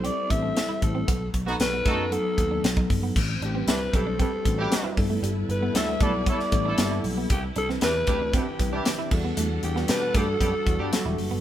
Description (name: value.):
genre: polished 1980s jazz-funk pop.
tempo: 116 BPM.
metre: 4/4.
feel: straight.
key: A dorian.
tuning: A4 = 436 Hz.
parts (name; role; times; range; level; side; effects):
breathy alto saxophone; melody; 0.0-11.2 s; G4 to E5; -29 LUFS; left 1 dB; none.
mellow tine electric piano; accompaniment; 0.0-11.4 s; E3 to B4; -30 LUFS; left 1 dB; medium stereo tremolo.
warm symphonic string section; sustained chords; 0.0-11.4 s; C3 to F#5; -38 LUFS; right 1 dB; none.
electric guitar at the edge of break-up; riff; 0.0-11.4 s; G3 to E4; -34 LUFS; right 6 dB; none.
picked electric bass; bass; 0.0-11.4 s; E1 to B2; -29 LUFS; equal; none.
crisp fusion drum kit; drums; 0.0-11.3 s; crash cymbal, hi-hat, kick drum, snare drum; -26 LUFS; equal; none.
warm horn section; second line; 1.5-11.2 s; B3 to A4; -32 LUFS; right 2 dB; none.
room: light reverb.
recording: band playing live in one room.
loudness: -22 LUFS.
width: side -11 dB against mid.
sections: 0.0-3.2 A section; 3.2-11.4 B section.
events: band accent 1.1-3.2.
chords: 0.0 Am7; 1.1 B7; 3.2 Am11; 5.0 G69; 7.3 Cmaj9; 9.1 Em11.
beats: 0.05 0.57 | 1.08 1.60 2.12 2.64 | 3.16 3.68 4.20 4.71 | 5.23 5.75 6.27 6.78 | 7.30 7.82 8.34 8.86 | 9.37 9.89 10.41 10.93.